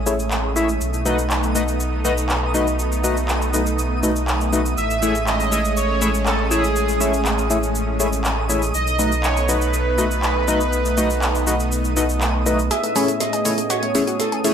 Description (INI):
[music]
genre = progressive house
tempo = 121 BPM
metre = 4/4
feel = straight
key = B mixolydian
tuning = A4 = 440 Hz
[part]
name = supersaw pad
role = sustained chords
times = 0.0-14.5 s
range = A2 to G#4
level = -26 LUFS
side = right 1 dB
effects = phaser, low-pass filter
[part]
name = dark detuned saw bass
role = bass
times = 0.0-12.7 s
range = A1 to B1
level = -23 LUFS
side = right 1 dB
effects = none
[part]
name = twinkling granular texture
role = texture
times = 0.0-14.5 s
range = D#6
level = -33 LUFS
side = right 3 dB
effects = built-in reverb
[part]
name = chorused polysynth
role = stabs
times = 0.1-14.5 s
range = A3 to E5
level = -23 LUFS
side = left 2 dB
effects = digital delay
[part]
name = deep house drum kit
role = drums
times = 0.1-14.5 s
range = handclaps, hi-hat, shaker, snare drum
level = -25 LUFS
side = equal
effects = none
[part]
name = soft supersaw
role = melody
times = 4.8-14.5 s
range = G#4 to E5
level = -24 LUFS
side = right 2 dB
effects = low-pass filter, digital delay
[part]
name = analog pluck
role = arpeggios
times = 12.7-14.5 s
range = A3 to G#4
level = -26 LUFS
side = right 1 dB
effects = chorus, digital delay
[sound]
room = moderate lush hall reverb, RT60 1.6 s, digital ambience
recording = none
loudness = -17 LUFS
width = side -8 dB against mid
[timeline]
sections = 0.0-12.7 A section; 12.7-14.5 B section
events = build-up 12.7-14.5; drum fill 12.7-14.5; filter sweep on supersaw synth 12.7-14.5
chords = 0.0 Amaj7; 0.8 B7; 4.8 Amaj7; 8.7 B7; 12.7 Amaj7